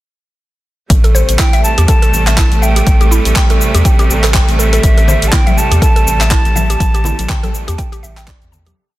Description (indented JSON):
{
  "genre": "afro house",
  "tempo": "122 BPM",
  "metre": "4/4",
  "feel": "swing 57% on 16ths",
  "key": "A minor pentatonic",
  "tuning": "A4 = 440 Hz",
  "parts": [
    { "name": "clear studio string section", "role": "sustained chords", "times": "0.9-8.7 s", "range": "C3 to A3", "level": "-20 LUFS", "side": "right 3 dB", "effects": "sidechain pumping" },
    { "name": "warm sub bass", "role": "bass", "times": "0.9-8.7 s", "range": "A1 to E2", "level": "-14 LUFS", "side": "equal", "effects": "sidechain pumping" },
    { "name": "deep house drum kit", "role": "drums", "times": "0.9-8.8 s", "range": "cabasa, handclaps, hi-hat", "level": "-18 LUFS", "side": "equal", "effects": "studio reverb" },
    { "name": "electronic kick drum", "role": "drums", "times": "0.9-8.4 s", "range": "none", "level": "-12 LUFS", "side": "equal", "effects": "studio reverb" },
    { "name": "mallet-like synth pluck", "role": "arpeggios", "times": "1.0-8.8 s", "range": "E4 to A5", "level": "-21 LUFS", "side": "equal", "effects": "chorus, sidechain pumping, dub echo" },
    { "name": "breathy silver concert flute", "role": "melody", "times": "1.4-8.2 s", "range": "E5 to A5", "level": "-20 LUFS", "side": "right 1 dB", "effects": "dub echo" },
    { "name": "congas", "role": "percussion", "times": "5.1-8.8 s", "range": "none", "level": "-22 LUFS", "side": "left 2 dB", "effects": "none" }
  ],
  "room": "light reverb",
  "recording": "dense, heavily limited modern master",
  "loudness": "-9 LUFS",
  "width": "side -16 dB against mid",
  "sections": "0.9-8.8 drop",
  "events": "drop 0.9-8.8; fade-out 6.1-8.8",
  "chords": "0.9 Am7"
}